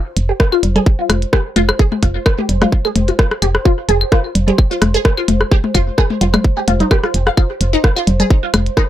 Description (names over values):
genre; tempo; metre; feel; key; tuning
minimal techno; 129 BPM; 4/4; swing 54% on 16ths; unclear; A4 = 441 Hz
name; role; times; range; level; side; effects
bubbling stepped-filter texture; texture; 0.0-8.9 s; C5; -27 LUFS; right 2 dB; chorus, built-in reverb, sidechain pumping
woody FM bass; bass; 0.2-8.7 s; F1; -16 LUFS; equal; sidechain pumping
minimal click drum kit; drums; 0.2-8.9 s; hi-hat, rim click; -20 LUFS; equal; none
resonant blip pluck; riff; 0.3-8.8 s; Eb4 to F5; -20 LUFS; left 1 dB; phaser, lush chorus, sidechain pumping, tape echo
electronic kick drum; drums; 0.4-8.9 s; none; -13 LUFS; equal; none
booming analog drum machine; percussion; 0.5-8.6 s; claves, congas, rim click, toms; -18 LUFS; left 2 dB; tape echo
room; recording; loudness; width
little or no reverb; dry, gritty hardware recording; -12 LUFS; side -12 dB against mid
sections
0.0-8.9 A section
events
none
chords
0.0 F5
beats
0.40 0.86 1.33 | 1.79 2.26 2.72 3.19 | 3.65 4.12 4.58 5.05 | 5.51 5.98 6.45 6.91 | 7.38 7.84 8.31 8.77